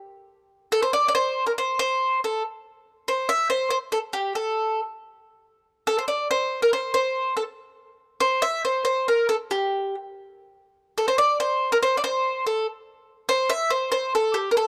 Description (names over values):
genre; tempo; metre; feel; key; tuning
italian folk; 94 BPM (dotted quarters); 6/8; straight; unclear; A4 = 441 Hz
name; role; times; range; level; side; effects
mandolin; solo; 0.7-14.7 s; G4 to E5; -24 LUFS; equal; none
room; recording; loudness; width
small room ambience; dry, close 1970s-style studio recording; -24 LUFS; mono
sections
0.0-5.0 A section; 5.0-14.7 A section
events
none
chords
none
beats
0.50 | 1.14 1.78 | 2.42 3.05 | 3.69 4.33 | 4.98 5.63 | 6.28 6.92 | 7.56 8.20 | 8.84 9.48 | 10.12 10.76 | 11.40 12.04 | 12.67 13.30 | 13.94 14.59